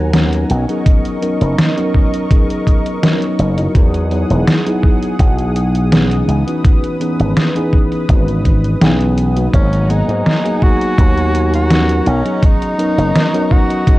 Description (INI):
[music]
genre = vaporwave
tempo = 83 BPM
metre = 4/4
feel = straight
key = unclear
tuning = A4 = 440 Hz
[part]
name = mellow tine electric piano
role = accompaniment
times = 0.0-14.0 s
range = E3 to A#4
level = -18 LUFS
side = equal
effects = wide subtle chorus, tape echo
[part]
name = lush unison pad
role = sustained chords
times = 0.0-14.0 s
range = G#4 to D#6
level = -26 LUFS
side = equal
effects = chorus, vintage 12-bit sampler grit
[part]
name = slap bass with an envelope filter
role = bass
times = 0.0-13.1 s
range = E1 to G#2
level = -15 LUFS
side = equal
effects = none
[part]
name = detuned 8-bit digital drum machine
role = drums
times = 0.1-14.0 s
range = hi-hat, snare drum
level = -16 LUFS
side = equal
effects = overdrive, small room ambience
[part]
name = electronic kick drum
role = drums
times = 0.9-14.0 s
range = none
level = -12 LUFS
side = equal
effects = small room ambience
[part]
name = breathy tenor saxophone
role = melody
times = 9.5-14.0 s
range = C#4 to F#4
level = -19 LUFS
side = equal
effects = tape echo
[sound]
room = little or no reverb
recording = dark, warm production, cassette tape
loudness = -11 LUFS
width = side -18 dB against mid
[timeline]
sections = 0.0-14.0 A section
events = none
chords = 0.0 G#m9; 0.5 Bmaj9; 3.8 Emaj9; 6.3 C#m9; 9.5 G#m9; 12.1 Bmaj9